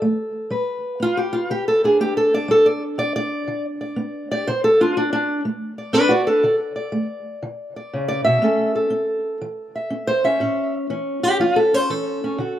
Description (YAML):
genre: acoustic country blues, solo or duo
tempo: 122 BPM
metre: 4/4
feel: swing 67% on 8ths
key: unclear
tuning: A4 = 440 Hz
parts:
  - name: fingerpicked steel-string acoustic guitar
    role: solo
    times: 0.0-12.6 s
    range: A2 to E5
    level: -18 LUFS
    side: equal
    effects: slapback echo
room: little or no reverb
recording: recorded outdoors, with no room sound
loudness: -18 LUFS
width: side -11 dB against mid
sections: 0.0-12.6 A section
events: steel-string acoustic guitar solo 0.0-12.6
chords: 0.0 N.C.; 0.5 G; 4.5 D5; 8.4 A